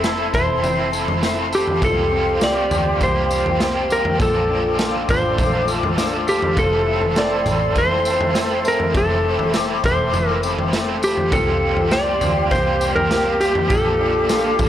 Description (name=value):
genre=dream pop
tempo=101 BPM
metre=4/4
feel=straight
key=F major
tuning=A4 = 439 Hz
part: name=overdriven electric guitar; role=accompaniment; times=0.0-14.7 s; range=Bb2 to A4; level=-27 LUFS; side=right 5 dB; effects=tremolo, analog chorus
part: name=flute section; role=sustained chords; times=0.0-14.7 s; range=E4 to D6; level=-24 LUFS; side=left 2 dB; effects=none
part: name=electric guitar through a small old amp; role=arpeggios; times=0.0-14.7 s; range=E3 to A4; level=-26 LUFS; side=left 3 dB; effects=ensemble chorus, analog delay
part: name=vintage muted picked electric bass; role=bass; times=0.0-14.7 s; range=E1 to D2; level=-27 LUFS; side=equal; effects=none
part: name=raw garage drum kit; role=drums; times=0.0-14.7 s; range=kick drum, snare drum, tambourine, toms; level=-22 LUFS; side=equal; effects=none
part: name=clean lap steel guitar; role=melody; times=0.3-14.7 s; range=G4 to D5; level=-20 LUFS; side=equal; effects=analog delay
room=light reverb, small room ambience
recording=none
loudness=-16 LUFS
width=side -11 dB against mid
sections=0.0-14.7 A section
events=none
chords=0.0 Fmaj7; 1.8 C7sus4; 4.2 Bbmaj7; 6.6 Fmaj7; 11.3 C7sus4; 13.7 Bbmaj7